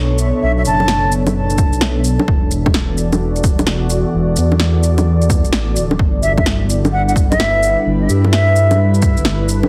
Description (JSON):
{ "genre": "future garage", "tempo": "129 BPM", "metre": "4/4", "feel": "swing 65% on 16ths", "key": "unclear", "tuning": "A4 = 440 Hz", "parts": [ { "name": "airy breathy pad", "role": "sustained chords", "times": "0.0-9.7 s", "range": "B2 to D5", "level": "-23 LUFS", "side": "equal", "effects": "chorus, vintage 12-bit sampler grit, sidechain pumping" }, { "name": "dark detuned saw bass", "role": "bass", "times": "0.0-9.6 s", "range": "D1 to G2", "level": "-18 LUFS", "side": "equal", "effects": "sidechain pumping" }, { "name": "electronic shaker, bongos and snare drum", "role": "drums", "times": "0.2-9.7 s", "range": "none", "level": "-22 LUFS", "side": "equal", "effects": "overdrive, studio reverb" }, { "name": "bright baroque flute", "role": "melody", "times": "0.4-1.1, 6.2-8.8 s", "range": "E5 to A5", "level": "-21 LUFS", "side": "equal", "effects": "digital delay" }, { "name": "electronic kick drum", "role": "drums", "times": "1.6-9.1 s", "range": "none", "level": "-19 LUFS", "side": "equal", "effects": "overdrive, studio reverb" } ], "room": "light reverb, digital ambience", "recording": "heavily compressed radio sound, multiband compression", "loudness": "-15 LUFS", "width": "mono", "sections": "0.0-9.7 A section", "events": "none", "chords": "0.0 Bm7; 2.3 E7sus4; 6.0 G6" }